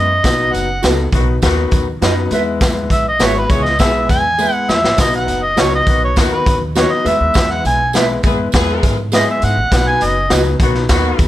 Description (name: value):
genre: uptempo 1960s-style soul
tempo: 101 BPM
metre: 4/4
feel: straight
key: B major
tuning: A4 = 440 Hz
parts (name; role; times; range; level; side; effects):
- overdriven harmonica; melody; 0.0-10.3 s; B4 to G#5; -16 LUFS; equal; none
- warm baby grand piano; accompaniment; 0.0-11.3 s; F#3 to B4; -20 LUFS; left 4 dB; none
- upright bass; bass; 0.0-11.3 s; F#1 to G#2; -20 LUFS; equal; none
- raw garage drum kit; drums; 0.2-11.3 s; hi-hat, kick drum, snare drum; -16 LUFS; equal; none
- tambourine; percussion; 0.2-11.3 s; none; -31 LUFS; right 6 dB; none
- mellow electric guitar; stabs; 0.8-10.4 s; F#4 to E5; -22 LUFS; right 3 dB; none
- warm horn section; second line; 1.1-11.3 s; D#3 to G#4; -24 LUFS; left 2 dB; none
room: light reverb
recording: none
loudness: -12 LUFS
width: side -14 dB against mid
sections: 0.0-11.3 A section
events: harmonica solo 0.0-11.3; drum fill 4.4-5.0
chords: 0.2 B; 2.3 E; 5.0 B; 7.1 E; 9.7 B